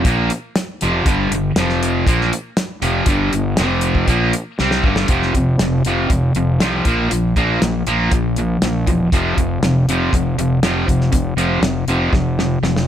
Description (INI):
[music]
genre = classic rock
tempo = 119 BPM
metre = 4/4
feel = straight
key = unclear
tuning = A4 = 438 Hz
[part]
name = distorted electric guitar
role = riff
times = 0.0-12.9 s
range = F2 to C4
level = -17 LUFS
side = equal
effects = distortion
[part]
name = fuzz fingered electric bass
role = bass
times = 0.0-12.9 s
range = E1 to C2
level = -21 LUFS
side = equal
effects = overdrive
[part]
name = damped 70s drum kit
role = drums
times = 0.0-12.9 s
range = hi-hat, kick drum, snare drum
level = -19 LUFS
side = equal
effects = none
[sound]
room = light reverb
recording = none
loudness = -15 LUFS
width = side -10 dB against mid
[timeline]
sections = 0.0-5.1 A section; 5.1-12.9 B section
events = drum fill 4.6-5.1, 12.1-12.9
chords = 0.1 Gm; 1.6 F5; 2.1 Gm; 3.6 F5; 4.1 Gm; 5.1 F5; 6.9 Bb5; 9.1 F5